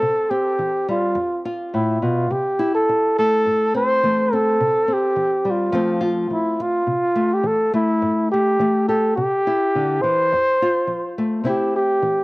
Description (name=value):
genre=highlife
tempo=105 BPM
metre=4/4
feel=swing 54% on 16ths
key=C major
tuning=A4 = 440 Hz
part: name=dark trumpet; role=melody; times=0.0-12.2 s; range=E4 to C5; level=-18 LUFS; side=equal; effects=cassette tape
part: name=nylon-string guitar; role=accompaniment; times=0.0-12.2 s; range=F2 to G4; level=-23 LUFS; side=left 1 dB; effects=cassette tape
room=moderate spring reverb, RT60 1.4 s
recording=home recording on cassette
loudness=-17 LUFS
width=side -22 dB against mid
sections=0.0-11.5 A section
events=none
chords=0.0 C; 1.2 F; 2.3 C6; 4.6 C; 5.7 F; 6.9 C6; 9.2 C; 10.3 F; 11.5 C6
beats=| 0.03 0.60 1.17 1.75 | 2.32 2.89 3.46 4.03 | 4.60 5.17 5.75 6.32 | 6.89 7.46 8.03 8.60 | 9.17 9.74 10.32 10.89 | 11.46 12.03